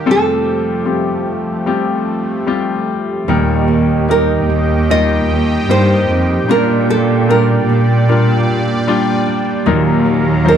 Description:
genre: pop ballad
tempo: 75 BPM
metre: 4/4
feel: straight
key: unclear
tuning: A4 = 440 Hz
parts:
  - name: nylon-string guitar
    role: melody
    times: 0.0-10.6 s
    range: A4 to Eb5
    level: -17 LUFS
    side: right 3 dB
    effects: slapback echo
  - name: clear concert grand piano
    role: accompaniment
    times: 0.0-10.6 s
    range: F2 to C5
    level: -17 LUFS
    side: left 6 dB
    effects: none
  - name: sweeping resonant pad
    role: sustained chords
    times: 0.0-10.6 s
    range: F3 to Bb5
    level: -21 LUFS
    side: right 1 dB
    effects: chorus
  - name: fingerpicked steel-string acoustic guitar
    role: arpeggios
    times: 3.3-10.6 s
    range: Bb2 to G4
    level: -20 LUFS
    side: right 12 dB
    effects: none
  - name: muted studio cello section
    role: bass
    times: 3.3-10.6 s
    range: Eb2 to Bb2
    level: -15 LUFS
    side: equal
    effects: none
room: small room ambience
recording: dry, close 1970s-style studio recording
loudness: -12 LUFS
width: side -8 dB against mid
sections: 0.0-3.3 A section; 3.3-10.6 B section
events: none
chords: 0.1 Fadd9; 3.3 Eb; 6.5 Bb6; 9.7 Ebmadd9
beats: | 0.07 0.87 1.67 2.49 | 3.30 4.10 4.90 5.70 | 6.50 7.29 8.09 8.87 | 9.66 10.45

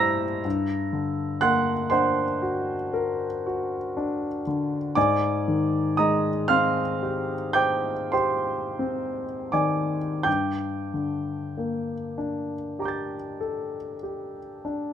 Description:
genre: classical, impressionist solo piano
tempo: 26-42 BPM (dotted quarters)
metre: 9/8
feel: rubato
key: unclear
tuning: A4 = 439 Hz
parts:
  - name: clear grand piano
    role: solo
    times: 0.0-14.9 s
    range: G2 to C7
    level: -24 LUFS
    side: equal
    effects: none
room: light reverb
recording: none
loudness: -24 LUFS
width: side -9 dB against mid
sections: 0.0-14.9 A section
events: none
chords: 0.5 Daug7/G; 5.0 Abmaj7; 10.3 Gmadd9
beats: | 0.45 1.92 3.45 | 4.96 6.48 8.14 | 10.26 12.16 14.00

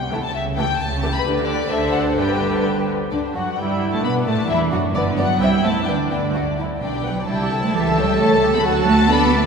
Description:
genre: quick classical-period movement for string orchestra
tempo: 130 BPM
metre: 2/4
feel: rubato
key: G major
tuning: A4 = 440 Hz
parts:
  - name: warm studio violin section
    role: melody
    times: 0.0-9.5 s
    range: B4 to B5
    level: -25 LUFS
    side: left 5 dB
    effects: none
  - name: rich studio double bass section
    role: bass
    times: 0.0-9.5 s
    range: G1 to B2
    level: -26 LUFS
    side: right 2 dB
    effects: none
  - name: warm studio cello section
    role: bass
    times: 0.0-9.5 s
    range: D2 to B3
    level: -22 LUFS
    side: right 3 dB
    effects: none
  - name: dark studio violin section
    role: second line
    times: 0.1-9.5 s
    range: G3 to A5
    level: -23 LUFS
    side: left 2 dB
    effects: none
  - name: warm studio viola section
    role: accompaniment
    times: 0.1-9.5 s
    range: D3 to A4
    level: -23 LUFS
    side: right 1 dB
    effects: none
room: wet cathedral reverb, RT60 6.0 s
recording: recorded in a church or concert hall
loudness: -17 LUFS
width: side -6 dB against mid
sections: 0.0-3.1 A section; 3.1-9.5 B section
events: none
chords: 0.3 A7/C#; 1.3 G/D; 2.2 G; 3.1 G5; 4.0 D; 5.0 G; 5.4 Am/C; 5.9 N.C.; 6.8 G/B; 7.3 Am7/C; 7.7 A7/C#; 8.7 D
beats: | 0.34 0.80 | 1.26 1.71 | 2.18 2.65 | 3.12 3.59 | 4.04 4.50 | 4.95 5.41 | 5.88 6.35 | 6.82 7.29 | 7.75 8.20 | 8.66 9.12

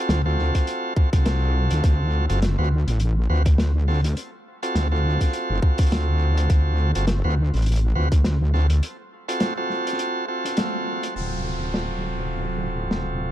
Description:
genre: glitch hop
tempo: 103 BPM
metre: 4/4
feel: swing 57% on 16ths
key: unclear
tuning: A4 = 440 Hz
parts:
  - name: bright tonewheel organ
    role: stabs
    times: 0.0-13.3 s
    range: C4 to B4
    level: -27 LUFS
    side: right 1 dB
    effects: overdrive, stopped rotary speaker, vintage 12-bit sampler grit, sidechain pumping, low-pass filter, dub echo
  - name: wobble bass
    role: bass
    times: 0.1-13.3 s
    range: D1 to D2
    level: -21 LUFS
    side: equal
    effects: chorus
  - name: vintage drum kit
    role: drums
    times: 0.1-13.0 s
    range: hi-hat, snare drum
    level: -28 LUFS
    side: left 1 dB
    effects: none
  - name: electronic kick drum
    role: drums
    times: 0.5-8.2 s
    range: none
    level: -18 LUFS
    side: equal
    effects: none
  - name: warm analog pad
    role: sustained chords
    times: 11.2-13.3 s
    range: C3 to E#5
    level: -33 LUFS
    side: right 2 dB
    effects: chorus, sidechain pumping
  - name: downlifter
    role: sound effects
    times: 11.2-13.3 s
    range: none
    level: -38 LUFS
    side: equal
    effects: none
room: studio ambience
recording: dark, warm production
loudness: -20 LUFS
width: side -12 dB against mid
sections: 0.0-11.2 A section; 11.2-13.3 B section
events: break 8.8-11.2; band accent 10.6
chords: 0.0 D7#9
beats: 0.09 0.67 1.26 | 1.84 2.42 3.00 3.59 | 4.17 4.75 5.33 5.92 | 6.50 7.08 7.66 8.25 | 8.83 9.41 9.99 10.58 | 11.16 11.74 12.32 12.91

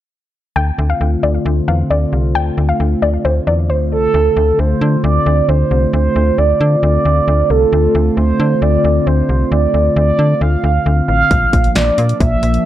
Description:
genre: synth-pop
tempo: 134 BPM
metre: 4/4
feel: straight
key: D minor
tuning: A4 = 441 Hz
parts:
  - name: soft round pluck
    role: second line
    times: 0.6-4.0 s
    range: C5 to G5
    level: -19 LUFS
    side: left 3 dB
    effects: chorus, tape echo
  - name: chorused pulse-width pad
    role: sustained chords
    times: 0.6-12.7 s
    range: D3 to F4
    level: -19 LUFS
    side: left 1 dB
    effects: low-pass filter
  - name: slap-like FM bass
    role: bass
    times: 0.6-12.6 s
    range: A1 to D3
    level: -15 LUFS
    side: equal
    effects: none
  - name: mellow horn-like synth lead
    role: melody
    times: 3.9-12.7 s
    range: A4 to F5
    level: -15 LUFS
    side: right 3 dB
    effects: chorus, phaser
  - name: house drum kit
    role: drums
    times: 11.3-12.6 s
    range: hi-hat, kick drum, snare drum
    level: -15 LUFS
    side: equal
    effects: none
room: digital ambience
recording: dark, warm production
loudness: -12 LUFS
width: side -12 dB against mid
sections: 0.6-4.1 A section; 4.1-12.7 B section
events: filter sweep on analog synth pad 0.6-4.1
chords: 0.6 Dm7; 11.3 Bb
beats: | 0.56 1.01 1.46 1.90 | 2.35 2.80 3.25 3.69 | 4.14 4.59 5.04 5.49 | 5.93 6.38 6.83 7.28 | 7.72 8.17 8.62 9.07 | 9.52 9.96 10.41 10.86 | 11.31 11.76 12.20 12.65

